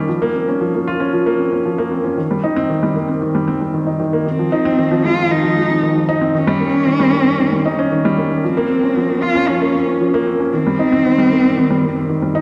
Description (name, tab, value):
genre	electronica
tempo	115 BPM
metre	4/4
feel	straight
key	unclear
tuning	A4 = 441 Hz
part	dark baby grand piano	riff	0.0-12.4 s	Eb3 to F4	-18 LUFS	equal	digital delay
part	dark cello	melody	4.3-12.3 s	C4 to F4	-19 LUFS	equal	none
room	wet concert hall reverb, RT60 2.0 s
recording	none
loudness	-16 LUFS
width	mono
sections	0.0-12.4 A section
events	none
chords	0.1 Bbmadd9; 2.2 Cm7; 4.3 Fm7; 6.4 Eb7; 8.4 Bbmadd9; 10.5 Cm7